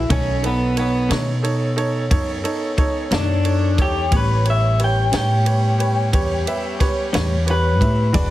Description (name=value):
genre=slow blues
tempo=60 BPM (dotted quarters)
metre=12/8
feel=straight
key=unclear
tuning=A4 = 440 Hz
part: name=electric guitar through a small old amp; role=melody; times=0.0-8.3 s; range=B3 to G5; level=-22 LUFS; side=left 1 dB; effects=plate reverb
part: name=bright upright piano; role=accompaniment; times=0.0-8.3 s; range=D#4 to E5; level=-26 LUFS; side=right 3 dB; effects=plate reverb
part: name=upright bass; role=bass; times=0.0-8.3 s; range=E1 to B2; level=-20 LUFS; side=equal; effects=none
part: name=clean electric guitar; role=accompaniment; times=0.1-8.3 s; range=A2 to F#4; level=-26 LUFS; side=left 3 dB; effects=tremolo
part: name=warm horn section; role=sustained chords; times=0.1-8.3 s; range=G3 to F#5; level=-29 LUFS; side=left 1 dB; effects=plate reverb
part: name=compact cocktail drum kit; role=drums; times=0.1-8.3 s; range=kick drum, ride cymbal, snare drum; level=-23 LUFS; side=equal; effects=none
room=light reverb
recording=heavily compressed radio sound, multiband compression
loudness=-16 LUFS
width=side -15 dB against mid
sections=0.0-8.3 A section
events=clean electric guitar solo 0.0-8.3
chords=0.1 B9; 4.1 A9